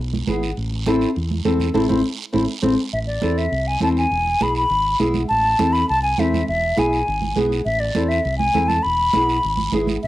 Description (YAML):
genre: latin, cumbia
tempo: 203 BPM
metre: 4/4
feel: straight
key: A harmonic minor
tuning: A4 = 440 Hz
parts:
  - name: fingered electric bass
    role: bass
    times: 0.0-10.1 s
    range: E1 to E2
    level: -24 LUFS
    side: equal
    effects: none
  - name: congas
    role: percussion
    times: 0.1-10.0 s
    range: none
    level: -26 LUFS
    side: right 5 dB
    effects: none
  - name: nylon-string guitar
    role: accompaniment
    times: 0.3-9.9 s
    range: B3 to A4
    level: -20 LUFS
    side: left 1 dB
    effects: cassette tape
  - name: guiro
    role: percussion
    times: 0.3-10.1 s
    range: none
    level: -34 LUFS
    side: right 7 dB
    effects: none
  - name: concert flute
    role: melody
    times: 2.9-10.1 s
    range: D5 to B5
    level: -19 LUFS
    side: left 1 dB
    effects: cassette tape
room: moderate studio reverb, RT60 0.6 s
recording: home recording on cassette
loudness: -17 LUFS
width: side -15 dB against mid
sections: 0.0-2.9 A section; 2.9-10.1 B section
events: band accent 1.8-2.9; nylon-string guitar fill 2.3-2.9; drum fill 2.5-2.9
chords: 0.0 E; 0.6 Am; 4.1 E; 5.3 Am; 6.5 E; 7.7 Am; 8.8 E